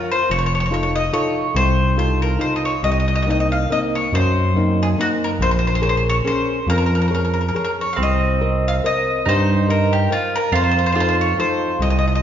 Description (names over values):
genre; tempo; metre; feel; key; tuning
italian folk, Italian serenade; 141 BPM; 3/4; swing 55% on 8ths, rubato; unclear; A4 = 440 Hz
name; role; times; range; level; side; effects
flamenco guitar; accompaniment; 0.0-12.2 s; C3 to Eb5; -23 LUFS; left 1 dB; none
bowl-back mandolin; melody; 0.1-12.2 s; F4 to F5; -21 LUFS; left 2 dB; none
growling FM bass; bass; 0.3-12.2 s; F1 to G2; -20 LUFS; equal; none
mandolin; second line; 8.0-12.2 s; C4 to F4; -23 LUFS; right 6 dB; none
room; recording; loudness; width
wet concert hall reverb, RT60 2.3 s; recorded in a church or concert hall, nothing above 7.5 kHz; -16 LUFS; side -9 dB against mid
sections
0.0-12.2 A section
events
none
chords
0.3 F7; 2.8 Cm7b5; 5.4 Bbm7; 8.0 Cm7; 10.5 F7